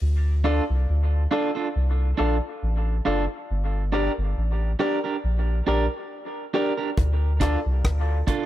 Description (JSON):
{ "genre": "dub reggae", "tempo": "69 BPM", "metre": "4/4", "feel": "swing 55% on 16ths", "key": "D minor", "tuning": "A4 = 440 Hz", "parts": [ { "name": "soft dub sub bass", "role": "bass", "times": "0.0-8.2 s", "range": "F#1 to D2", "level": "-22 LUFS", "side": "equal", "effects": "none" }, { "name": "electric guitar at the edge of break-up", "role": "accompaniment", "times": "0.4-8.5 s", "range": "D4 to Bb4", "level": "-28 LUFS", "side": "right 7 dB", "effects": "dub echo" }, { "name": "warm upright piano", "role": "stabs", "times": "0.4-7.6 s", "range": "F4 to D5", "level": "-30 LUFS", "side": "left 5 dB", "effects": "dub echo" }, { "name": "deep reggae drum kit", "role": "drums", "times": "7.0-8.5 s", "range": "hi-hat, kick drum, rim click", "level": "-25 LUFS", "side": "equal", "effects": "none" }, { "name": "bongos", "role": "percussion", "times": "7.0-8.5 s", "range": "none", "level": "-38 LUFS", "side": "right 1 dB", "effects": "none" } ], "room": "studio reverb", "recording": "echo-heavy mix", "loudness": "-21 LUFS", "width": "side -13 dB against mid", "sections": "0.0-8.5 A section", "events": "break 0.0-7.0", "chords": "0.0 Dm; 3.5 Gm; 7.0 Dm" }